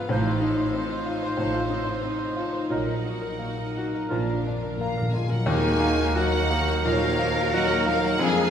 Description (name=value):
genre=classical, romantic movement for piano and orchestra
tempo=84-96 BPM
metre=4/4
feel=rubato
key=Eb minor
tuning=A4 = 440 Hz
part: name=clear grand piano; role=melody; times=0.0-8.5 s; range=Eb2 to C5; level=-28 LUFS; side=left 2 dB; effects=none
part: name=clear studio violin section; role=melody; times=0.0-8.5 s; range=F5 to Bb5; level=-33 LUFS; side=left 1 dB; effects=none
part: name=clear studio violin section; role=second line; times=0.0-8.5 s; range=Bb3 to C5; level=-37 LUFS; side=left 3 dB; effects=none
part: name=rich studio viola section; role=accompaniment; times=0.0-8.5 s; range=Gb3 to Gb4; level=-33 LUFS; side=right 1 dB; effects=none
part: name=dark French horn section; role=sustained chords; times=0.0-8.5 s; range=F3 to Eb4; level=-32 LUFS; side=left 3 dB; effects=none
part: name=mellow clarinet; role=second line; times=0.1-8.5 s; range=D4 to F4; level=-33 LUFS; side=left 1 dB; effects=none
part: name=mellow hollow large flute ensemble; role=second line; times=0.1-8.5 s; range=Db5 to F5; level=-36 LUFS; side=left 1 dB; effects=none
part: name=warm oboe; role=second line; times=0.1-8.5 s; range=Bb4 to C5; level=-34 LUFS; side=right 2 dB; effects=none
part: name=mellow bassoon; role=accompaniment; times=0.1-8.5 s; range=Eb3 to Gb3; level=-32 LUFS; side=right 1 dB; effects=none
part: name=warm trumpet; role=stabs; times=0.1-5.1 s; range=Bb4 to C5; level=-36 LUFS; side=right 4 dB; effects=none
part: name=rich studio cello section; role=bass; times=0.1-8.5 s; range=A2 to Bb4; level=-32 LUFS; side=right 3 dB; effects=none
part: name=rich studio double bass section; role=bass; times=0.1-8.5 s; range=A1 to F2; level=-31 LUFS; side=right 4 dB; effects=none
part: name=timpani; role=percussion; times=4.1-6.5 s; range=Bb2 to Eb3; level=-29 LUFS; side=equal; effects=none
room=wet recital hall reverb, RT60 1.6 s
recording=none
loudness=-22 LUFS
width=side -8 dB against mid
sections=0.0-5.5 A section; 5.5-8.5 B section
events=timpani fill 4.1-5.5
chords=0.1 F7/A; 2.7 Ebm/Bb; 4.1 Bb; 5.5 Ebm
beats=| 0.11 0.75 1.40 2.04 | 2.71 3.41 4.12 4.79 | 5.47 6.17 6.85 7.53 | 8.19